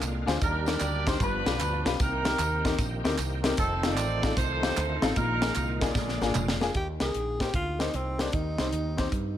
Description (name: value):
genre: uptempo gospel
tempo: 152 BPM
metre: 4/4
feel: swing 65% on 8ths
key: Eb major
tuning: A4 = 440 Hz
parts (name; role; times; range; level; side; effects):
- warm baby grand piano; accompaniment; 0.0-9.1 s; G2 to C5; -32 LUFS; left 5 dB; none
- bright tonewheel organ; sustained chords; 0.0-6.7 s; D3 to G4; -37 LUFS; right 2 dB; slow rotary speaker, overdrive, chorus vibrato
- woody fretless electric bass; bass; 0.0-9.4 s; F1 to G2; -32 LUFS; right 1 dB; none
- crisp fusion drum kit; drums; 0.0-9.2 s; hi-hat, kick drum, snare drum, toms; -30 LUFS; equal; none
- handclaps and tambourine; percussion; 0.0-6.7 s; none; -39 LUFS; right 6 dB; none
- warm horn section; melody; 0.4-6.6 s; C4 to D5; -30 LUFS; right 2 dB; none
- mellow French horn section; sustained chords; 6.7-9.4 s; Bb3 to Eb4; -41 LUFS; right 7 dB; none
- breathy tenor saxophone; melody; 6.8-9.1 s; C4 to Ab4; -33 LUFS; equal; tape echo
room: light reverb, small room ambience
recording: none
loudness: -25 LUFS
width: side -11 dB against mid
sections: 0.0-6.7 A section; 6.7-9.4 B section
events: drum fill 6.0-6.7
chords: 0.4 Ebmaj7; 1.2 G7; 2.0 Cm7; 3.6 F7; 5.2 Bb7sus4; 6.0 Bb7; 6.7 Eb; 8.3 Cm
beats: 0.02 | 0.42 0.81 1.21 1.60 | 2.00 2.40 2.79 3.19 | 3.58 3.98 4.37 4.77 | 5.17 5.56 5.96 6.35 | 6.75 7.14 7.54 7.94 | 8.34 8.73 9.13